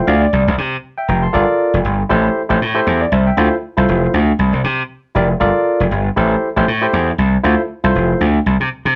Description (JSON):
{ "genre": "early-eighties boogie funk", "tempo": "118 BPM", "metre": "4/4", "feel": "swing 56% on 16ths", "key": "unclear", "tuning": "A4 = 440 Hz", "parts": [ { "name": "barky tine electric piano", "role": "accompaniment", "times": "0.0-8.3 s", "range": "E4 to C6", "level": "-19 LUFS", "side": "equal", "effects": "overdrive" }, { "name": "gritty slap bass", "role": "bass", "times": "0.1-8.9 s", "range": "F1 to C3", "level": "-17 LUFS", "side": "equal", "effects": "overdrive" } ], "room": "moderate small room reverb, RT60 0.5 s", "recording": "band playing live in one room", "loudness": "-16 LUFS", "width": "mono", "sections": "0.0-9.0 A section", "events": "none", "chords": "0.3 Fsus2; 1.3 Gm9; 2.1 Am7; 3.4 Dm7; 4.4 C7; 5.4 Gm9; 6.2 Am7; 7.4 Dm7" }